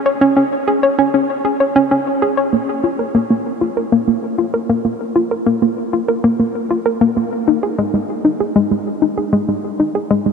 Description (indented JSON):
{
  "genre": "ambient",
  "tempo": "97 BPM",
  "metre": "4/4",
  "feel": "straight",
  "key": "Bb minor",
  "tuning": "A4 = 440 Hz",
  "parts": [
    { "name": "hollow square pluck", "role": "solo", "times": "0.1-10.3 s", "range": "Ab3 to Db5", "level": "-14 LUFS", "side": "equal", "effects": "chorus, ping-pong delay" }
  ],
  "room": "wet huge ambient reverb, RT60 7.4 s",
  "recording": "none",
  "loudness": "-14 LUFS",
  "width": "side -6 dB against mid",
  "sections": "0.0-2.5 A section; 2.5-10.3 B section",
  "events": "none",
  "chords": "none",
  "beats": "| 0.06 0.67 1.29 1.91 | 2.53 3.15 3.77 4.38 | 5.00 5.62 6.24 6.86 | 7.48 8.10 8.71 9.33 | 9.95"
}